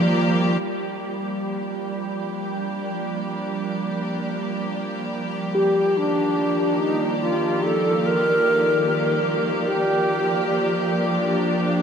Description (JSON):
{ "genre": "ambient", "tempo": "73 BPM", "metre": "3/4", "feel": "straight", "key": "G minor", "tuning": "A4 = 440 Hz", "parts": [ { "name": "bright symphonic string section", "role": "sustained chords", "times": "0.0-11.8 s", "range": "Eb3 to D5", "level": "-24 LUFS", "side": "equal", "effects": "none" }, { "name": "muted felt-like synth keys", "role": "arpeggios", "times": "0.0-0.6, 5.5-10.5 s", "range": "G4", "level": "-27 LUFS", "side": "left 3 dB", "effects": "chorus, diffuse ambient delay" }, { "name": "organ-like drone", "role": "drone", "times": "0.0-10.6 s", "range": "G3", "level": "-31 LUFS", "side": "right 3 dB", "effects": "ensemble chorus, built-in reverb" }, { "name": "drifting glass-harmonics texture", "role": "texture", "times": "0.0-0.6, 10.5-11.8 s", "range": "F4 to G5", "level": "-42 LUFS", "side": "right 1 dB", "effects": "none" }, { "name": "bright alto flute", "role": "melody", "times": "5.6-11.8 s", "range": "D4 to Bb4", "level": "-21 LUFS", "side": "right 1 dB", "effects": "diffuse ambient delay" } ], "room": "wet huge ambient reverb, RT60 9.0 s", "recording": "in a vast, echoing space", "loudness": "-20 LUFS", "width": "side -7 dB against mid", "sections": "0.6-10.5 A section; 10.5-11.8 B section", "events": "fade-in on string section 0.6-10.5; fade-out on synth drone 0.6-10.5", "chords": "0.0 Ebmaj9; 0.6 Gm7; 5.5 Ebmaj9; 10.5 Gm7" }